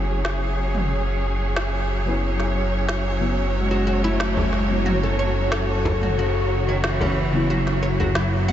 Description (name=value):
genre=organic downtempo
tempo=91 BPM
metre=4/4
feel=straight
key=unclear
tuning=A4 = 440 Hz
part: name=deep mellow chord stab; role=accompaniment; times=0.0-8.5 s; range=C#3 to E4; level=-31 LUFS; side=left 2 dB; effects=chorus, tape echo
part: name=warm studio string section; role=sustained chords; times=0.0-8.5 s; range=F#3 to C#5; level=-26 LUFS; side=right 1 dB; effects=none
part: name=smooth synth bass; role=bass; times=0.0-8.5 s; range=F#1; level=-24 LUFS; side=equal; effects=none
part: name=organic electronic drum kit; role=drums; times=0.2-8.3 s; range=snare drum, toms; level=-29 LUFS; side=equal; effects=overdrive
part: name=rich cello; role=melody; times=3.5-8.5 s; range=C#3 to A3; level=-28 LUFS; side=equal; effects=tape echo
part: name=oud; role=arpeggios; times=3.7-8.5 s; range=C#4 to F#5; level=-28 LUFS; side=left 2 dB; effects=tape echo
part: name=frame drum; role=percussion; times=4.4-8.1 s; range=none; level=-30 LUFS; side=left 1 dB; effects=none
room=moderate huge ambient reverb, RT60 7.5 s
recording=dreamy mix soaked in reverb, nothing above 7.9 kHz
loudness=-20 LUFS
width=side -11 dB against mid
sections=0.0-8.5 A section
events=none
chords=0.0 F#7sus2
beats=0.24 | 0.90 1.56 2.22 2.88 | 3.54 4.20 4.86 5.52 | 6.18 6.84 7.50 8.16